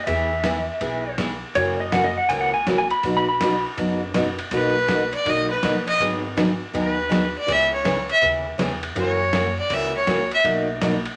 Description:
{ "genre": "country, western swing", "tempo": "162 BPM", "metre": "4/4", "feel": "swing 64% on 8ths", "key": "B major", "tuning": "A4 = 436 Hz", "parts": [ { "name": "clean lap steel guitar", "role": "second line", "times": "0.0-3.6 s", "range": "C#5 to B5", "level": "-24 LUFS", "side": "equal", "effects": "none" }, { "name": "picked steel-string acoustic guitar", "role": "accompaniment", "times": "0.1-10.9 s", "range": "B2 to G#4", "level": "-27 LUFS", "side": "equal", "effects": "none" }, { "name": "upright bass", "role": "bass", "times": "0.1-11.0 s", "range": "F#1 to F#2", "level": "-36 LUFS", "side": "equal", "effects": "none" }, { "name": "trip hop sampler-style drum kit", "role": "drums", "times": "0.1-11.1 s", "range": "hi-hat, kick drum, ride cymbal, snare drum", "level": "-30 LUFS", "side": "equal", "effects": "overdrive" }, { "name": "clear fiddle", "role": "melody", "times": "4.5-10.4 s", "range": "B4 to E5", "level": "-23 LUFS", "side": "equal", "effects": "none" } ], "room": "wet studio reverb, RT60 0.5 s", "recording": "none", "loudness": "-22 LUFS", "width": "mono", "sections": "0.0-4.5 A section; 4.5-11.2 A section", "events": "electric slide guitar solo 0.0-4.5; fiddle solo 4.5-11.2", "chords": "0.1 E; 1.6 F#7; 3.0 B; 4.5 Bmaj7; 6.0 G#m7; 7.5 C#m7; 9.0 F#7; 10.4 Bmaj7", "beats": "| 0.07 0.45 0.82 1.19 | 1.56 1.93 2.30 2.67 | 3.04 3.41 3.78 4.15 | 4.52 4.89 5.26 5.63 | 6.00 6.37 6.74 7.11 | 7.48 7.85 8.22 8.59 | 8.96 9.33 9.70 10.07 | 10.44 10.81" }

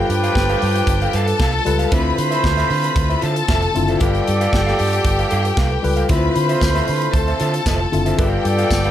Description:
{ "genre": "disco", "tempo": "115 BPM", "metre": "4/4", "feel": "straight", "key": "D dorian", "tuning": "A4 = 440 Hz", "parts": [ { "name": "clear studio string section", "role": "second line", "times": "0.0-8.9 s", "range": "G4 to B5", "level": "-22 LUFS", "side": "left 3 dB", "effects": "none" }, { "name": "electric guitar through a small old amp", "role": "accompaniment", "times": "0.0-8.9 s", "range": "F4 to F5", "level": "-27 LUFS", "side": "right 5 dB", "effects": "none" }, { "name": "mellow tine electric piano", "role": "accompaniment", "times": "0.0-8.9 s", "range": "D3 to B4", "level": "-23 LUFS", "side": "left 4 dB", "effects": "phaser" }, { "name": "mellow horn section", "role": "stabs", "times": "0.0-8.9 s", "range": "F3 to D5", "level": "-23 LUFS", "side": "right 4 dB", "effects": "none" }, { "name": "vintage muted fingered electric bass", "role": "bass", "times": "0.1-8.9 s", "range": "F1 to D3", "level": "-20 LUFS", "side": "right 1 dB", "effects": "none" }, { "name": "modern studio drum kit", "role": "drums", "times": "0.1-8.9 s", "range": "hi-hat, kick drum, snare drum", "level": "-22 LUFS", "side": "equal", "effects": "none" }, { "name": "tambourine", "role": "percussion", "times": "6.6-8.8 s", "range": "none", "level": "-30 LUFS", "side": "left 8 dB", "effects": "none" } ], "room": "light reverb, small room ambience", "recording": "none", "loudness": "-15 LUFS", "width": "side -11 dB against mid", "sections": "0.0-8.9 A section", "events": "tine electric piano fill 5.3-6.1", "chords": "0.0 G9; 1.9 Dm9; 4.0 G9; 6.1 Dm9; 8.2 G9", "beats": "0.35 0.88 1.40 | 1.92 2.44 2.96 3.48 | 4.01 4.53 5.05 5.57 | 6.10 6.62 7.14 7.66 | 8.18 8.71" }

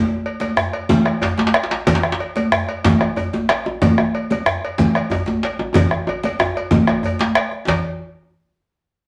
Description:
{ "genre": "west african traditional, West African drum ensemble", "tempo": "124 BPM (dotted quarters)", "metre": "12/8", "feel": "straight", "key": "none", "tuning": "none", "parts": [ { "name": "cowbell", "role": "percussion", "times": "0.3-7.8 s", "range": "none", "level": "-29 LUFS", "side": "equal", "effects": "none" }, { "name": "congas", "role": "percussion", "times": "0.4-7.8 s", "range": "none", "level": "-22 LUFS", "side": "equal", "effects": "none" }, { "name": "djembe", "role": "percussion", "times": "0.4-7.8 s", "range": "none", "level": "-27 LUFS", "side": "equal", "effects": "none" }, { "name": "bombo", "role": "percussion", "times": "0.6-7.8 s", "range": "none", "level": "-22 LUFS", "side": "equal", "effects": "none" }, { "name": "djembe", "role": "percussion", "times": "1.2-7.8 s", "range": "none", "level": "-26 LUFS", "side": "equal", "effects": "none" } ], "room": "wet studio reverb, RT60 0.7 s", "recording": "none", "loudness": "-19 LUFS", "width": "mono", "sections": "0.0-7.7 A section; 7.7-9.1 B section", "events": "drum fill 5.8-7.7", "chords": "none", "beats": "0.41 0.90 1.39 | 1.88 2.36 2.85 3.33 | 3.82 4.30 4.79 5.27 | 5.75 6.23 6.72 7.20 | 7.68" }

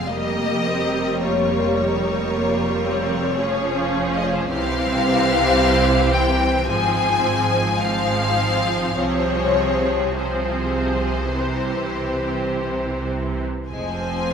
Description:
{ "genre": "classical, slow romantic movement for string orchestra", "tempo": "50-55 BPM", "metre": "4/4", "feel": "rubato", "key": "F minor", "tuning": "A4 = 440 Hz", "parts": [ { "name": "rich studio violin section", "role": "melody", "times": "0.0-14.3 s", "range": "C5 to Ab5", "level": "-23 LUFS", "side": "left 6 dB", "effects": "none" }, { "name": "clear symphonic violin section", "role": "second line", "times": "0.0-14.3 s", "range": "Ab3 to C5", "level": "-26 LUFS", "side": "equal", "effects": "none" }, { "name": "clear symphonic viola section", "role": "accompaniment", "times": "0.0-14.3 s", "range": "E3 to Db4", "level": "-24 LUFS", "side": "right 2 dB", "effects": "none" }, { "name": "bright symphonic cello section", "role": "bass", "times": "0.0-14.3 s", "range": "F2 to C3", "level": "-28 LUFS", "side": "right 3 dB", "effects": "none" }, { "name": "rich symphonic double bass section", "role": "bass", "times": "0.0-14.3 s", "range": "F1 to C2", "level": "-27 LUFS", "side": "right 3 dB", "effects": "none" } ], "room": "wet concert hall reverb, RT60 2.0 s", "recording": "minimal, uncompressed stereo recording", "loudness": "-18 LUFS", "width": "side -7 dB against mid", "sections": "0.0-14.3 A section", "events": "none", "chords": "0.1 Bbm/F; 4.5 C; 6.7 Fm/Ab; 9.0 Fm/C; 11.3 C; 13.7 Fm", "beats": "| 0.10 1.21 2.31 3.41 | 4.51 5.61 6.70 7.83 | 9.00 10.17 11.34 12.52 | 13.70" }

